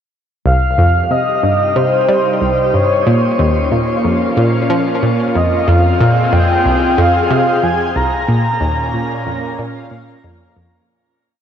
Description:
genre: ambient, sequencer-driven space music.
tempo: 92 BPM.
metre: 4/4.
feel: straight.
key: Bb dorian.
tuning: A4 = 440 Hz.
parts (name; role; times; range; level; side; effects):
breathy flute-like synth lead; melody; 0.5-10.2 s; C5 to Bb5; -16 LUFS; equal; analog chorus, ping-pong delay.
lush unison pad; sustained chords; 0.5-10.9 s; Bb2 to G5; -20 LUFS; equal; chorus, phaser.
analog pluck; riff; 0.5-10.7 s; C2 to G3; -15 LUFS; equal; chorus, phaser, ping-pong delay.
room: wet shimmer reverb, RT60 8.2 s.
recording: worn, warbling old tape, cassette tape, warbly pitch drift.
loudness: -12 LUFS.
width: side -8 dB against mid.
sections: 0.5-10.9 A section.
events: fade-in on analog synth pad 0.5-10.9; fade-out 7.4-10.9.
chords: 0.5 Cm; 3.1 Bbm; 5.7 Fm; 8.3 Bbm.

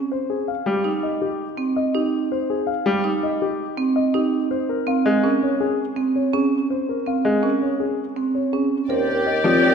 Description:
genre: classical, minimalist pattern music.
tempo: 164 BPM.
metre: 6/4.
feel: straight.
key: unclear.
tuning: A4 = 440 Hz.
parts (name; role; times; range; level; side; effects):
dark concert grand piano; melody; 0.1-9.7 s; G4 to F5; -25 LUFS; left 8 dB; none.
bright grand piano; accompaniment; 0.7-9.7 s; F3 to Ab3; -24 LUFS; left 1 dB; none.
marimba with medium mallets; arpeggios; 0.8-9.7 s; C4 to Bb4; -22 LUFS; right 4 dB; none.
warm oboe; second line; 8.9-9.7 s; G4; -21 LUFS; equal; none.
warm symphonic string section; sustained chords; 8.9-9.7 s; G4 to D5; -24 LUFS; left 2 dB; none.
mellow bassoon; bass; 8.9-9.7 s; Eb2; -23 LUFS; left 1 dB; none.
room: wet concert hall reverb, RT60 2.3 s.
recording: minimal, uncompressed stereo recording.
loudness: -19 LUFS.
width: side -6 dB against mid.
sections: 0.0-8.9 A section.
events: none.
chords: 0.1 Abmaj7 (rootless); 4.5 Bbm7; 8.9 Ebmaj13.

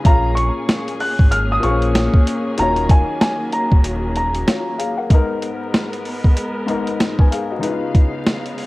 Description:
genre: hip hop, boom-bap hip-hop.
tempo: 95 BPM.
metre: 4/4.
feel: swing 60% on 16ths.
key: G# dorian.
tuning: A4 = 440 Hz.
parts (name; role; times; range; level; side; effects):
dark grand piano; accompaniment; 0.0-8.7 s; G#2 to G#5; -24 LUFS; left 4 dB; high-pass filter, low-pass filter, cassette tape.
dark studio string section; sustained chords; 0.0-8.7 s; C#3 to E#5; -26 LUFS; equal; high-pass filter, low-pass filter, cassette tape.
warm upright piano; melody; 0.1-5.1 s; G#5 to F#6; -22 LUFS; equal; high-pass filter, low-pass filter, cassette tape, analog delay.
sub bass with octave; bass; 0.1-4.4 s; D#1 to A#1; -21 LUFS; equal; none.
boom bap sampler-style drum kit; drums; 0.1-8.7 s; hi-hat, kick drum, snare drum; -15 LUFS; equal; none.
room: small room ambience.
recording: home recording on cassette, vinyl crackle.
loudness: -15 LUFS.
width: side -20 dB against mid.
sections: 0.0-5.1 A section; 5.1-8.7 B section.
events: break 3.8-5.1.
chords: 0.1 A#m; 2.6 D#m7; 5.1 G#madd9; 7.6 C#7.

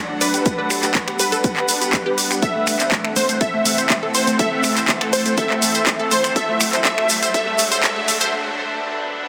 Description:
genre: progressive house.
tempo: 122 BPM.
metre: 4/4.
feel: straight.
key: A dorian.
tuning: A4 = 441 Hz.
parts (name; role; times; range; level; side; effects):
plucky unison lead; melody; 0.0-8.3 s; B4 to E5; -24 LUFS; equal; ensemble chorus, tape echo.
shimmering ambient pad; sustained chords; 0.1-9.3 s; E3 to B4; -29 LUFS; equal; chorus, built-in reverb, sidechain pumping.
unison pluck; arpeggios; 0.0-8.3 s; A3 to D5; -26 LUFS; equal; phaser, sidechain pumping, tape echo.
drifting glass-harmonics texture; texture; 0.1-8.3 s; F#5; -35 LUFS; equal; chorus, built-in reverb, sidechain pumping.
house drum kit; drums; 0.2-8.3 s; finger snaps, handclaps, hi-hat; -24 LUFS; equal; overdrive.
tube shaker; percussion; 0.2-8.3 s; none; -27 LUFS; equal; none.
electronic kick drum; drums; 0.5-7.9 s; none; -25 LUFS; equal; overdrive, high-pass filter on kick.
riser; sound effects; 3.7-8.3 s; none; -36 LUFS; equal; none.
room: moderate huge ambient reverb, RT60 7.8 s.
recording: dense, heavily limited modern master, high-pass filter.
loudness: -18 LUFS.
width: mono.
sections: 0.0-9.3 A section.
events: build-up 0.0-9.3; filter sweep on synth pluck 0.0-9.3; riser 3.7-8.3; break 8.3-9.3.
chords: 0.5 G; 2.4 Am; 6.4 D; 8.3 G.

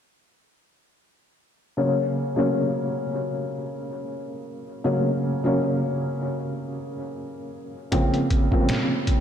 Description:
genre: trip hop.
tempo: 78 BPM.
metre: 4/4.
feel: swing 56% on 16ths.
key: unclear.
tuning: A4 = 440 Hz.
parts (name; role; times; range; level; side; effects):
felt-muted upright piano; accompaniment; 1.8-9.2 s; Db3 to Db4; -24 LUFS; equal; tremolo, low-pass filter, tape echo.
trip hop sampler-style drum kit; drums; 7.9-9.2 s; hi-hat, kick drum, snare drum; -22 LUFS; equal; studio reverb.
room: moderate plate reverb, RT60 2.3 s.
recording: dreamy mix soaked in reverb.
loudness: -22 LUFS.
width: side -9 dB against mid.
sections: 1.8-9.2 A section.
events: filter sweep on felt piano 1.8-9.2.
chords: 1.8 Gb; 7.9 Bbmadd9.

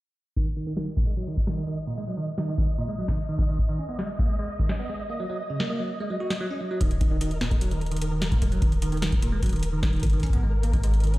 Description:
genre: IDM.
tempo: 149 BPM.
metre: 4/4.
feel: straight.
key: unclear.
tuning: A4 = 439 Hz.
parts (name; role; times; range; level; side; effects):
bell-like tine electric piano; arpeggios; 0.4-11.2 s; A#2 to F#4; -30 LUFS; right 1 dB; phaser, low-pass filter, dub echo.
electronic kick drum; drums; 0.4-10.8 s; none; -24 LUFS; equal; none.
flickering grainy texture; texture; 1.1-11.2 s; A#4 to D#5; -37 LUFS; equal; built-in reverb, sidechain pumping.
booming analog drum machine; drums; 0.8-11.2 s; hi-hat, snare drum; -33 LUFS; equal; none.
rubbery square bass; bass; 6.8-11.2 s; D#1 to G#1; -26 LUFS; equal; none.
room: light reverb.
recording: played on a big sound system in a bare room, stone room reverb, low-pass filter.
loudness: -24 LUFS.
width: side -18 dB against mid.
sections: 0.4-6.8 A section; 6.8-11.2 B section.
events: filter sweep on tine electric piano 0.4-6.8; filter sweep 0.4-6.8; break 5.2-6.8.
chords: 0.4 N.C.; 3.6 G#5; 5.2 N.C.; 6.8 D#5; 10.0 G#5.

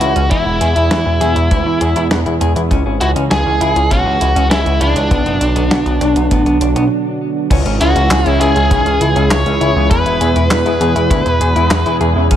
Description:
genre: synthwave.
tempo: 100 BPM.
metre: 4/4.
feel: straight.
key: C# phrygian.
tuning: A4 = 441 Hz.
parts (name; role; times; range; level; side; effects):
biting lead guitar; melody; 0.0-12.0 s; D4 to C#5; -17 LUFS; right 1 dB; overdrive, digital delay.
warm analog pad; sustained chords; 0.0-12.4 s; B2 to G#4; -20 LUFS; right 3 dB; wide subtle chorus, sidechain pumping.
clean electric guitar; riff; 0.0-12.4 s; B3 to B4; -21 LUFS; left 4 dB; lush chorus, ping-pong delay.
chorused synth bass; bass; 0.0-12.4 s; E1 to E2; -16 LUFS; equal; none.
clean 12-bit digital drum machine; drums; 0.0-12.4 s; crash cymbal, handclaps, hi-hat, snare drum; -20 LUFS; equal; studio reverb.
kick drum; drums; 0.3-12.4 s; none; -17 LUFS; equal; studio reverb.
analog synth brass; stabs; 7.8-12.4 s; C#3 to G#4; -20 LUFS; left 3 dB; chorus.
room: light reverb, digital ambience.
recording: none.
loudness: -11 LUFS.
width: side -10 dB against mid.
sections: 0.0-7.5 A section; 7.5-12.4 B section.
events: break 6.9-7.5.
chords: 0.3 E; 2.7 C#m; 5.1 Bm; 7.5 C#m; 9.9 E.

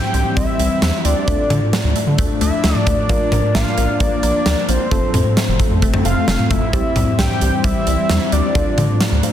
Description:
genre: synth-pop.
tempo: 132 BPM.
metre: 4/4.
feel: straight.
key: unclear.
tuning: A4 = 439 Hz.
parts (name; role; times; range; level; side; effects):
fat analog lead; melody; 0.0-9.2 s; C5 to G5; -22 LUFS; left 1 dB; tape echo.
mellow FM electric piano; accompaniment; 0.0-9.3 s; C4 to D5; -28 LUFS; right 1 dB; chorus, tremolo.
lush unison pad; sustained chords; 0.1-9.3 s; E3 to D4; -23 LUFS; left 2 dB; chorus.
resonant blip pluck; arpeggios; 0.0-9.3 s; F3 to C4; -27 LUFS; left 1 dB; phaser, tape echo.
rubbery square bass; bass; 0.1-9.2 s; F1 to D3; -19 LUFS; equal; none.
huge arena drum kit; drums; 0.1-9.3 s; hi-hat, kick drum, snare drum, toms; -18 LUFS; equal; none.
room: moderate lush hall reverb, RT60 1.9 s, small room ambience.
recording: dense, heavily limited modern master.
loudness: -14 LUFS.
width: side -10 dB against mid.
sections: 0.0-9.3 A section.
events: none.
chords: 0.0 C; 1.3 Dm; 3.1 Bb; 4.9 F; 6.7 C; 8.6 Dm.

